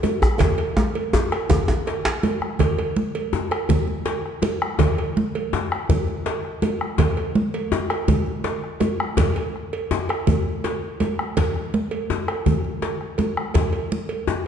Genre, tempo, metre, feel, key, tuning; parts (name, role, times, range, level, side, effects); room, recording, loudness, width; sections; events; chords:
west african traditional, West African drum ensemble; 109 BPM (dotted quarters); 12/8; straight
congas; percussion; 0.0-14.1 s; -25 LUFS; right 3 dB
cowbell; percussion; 0.0-14.3 s; -28 LUFS; right 6 dB
djembe; percussion; 0.0-14.4 s; -26 LUFS; left 5 dB
bombo; percussion; 0.2-13.7 s; -25 LUFS; equal
djembe; percussion; 0.2-2.2 s; -22 LUFS; equal
wet recital hall reverb, RT60 1.7 s; dark, warm production, nothing above 10.4 kHz; -20 LUFS; side -8 dB against mid
0.0-2.6 A section; 2.6-14.5 B section
drum fill 0.4-2.6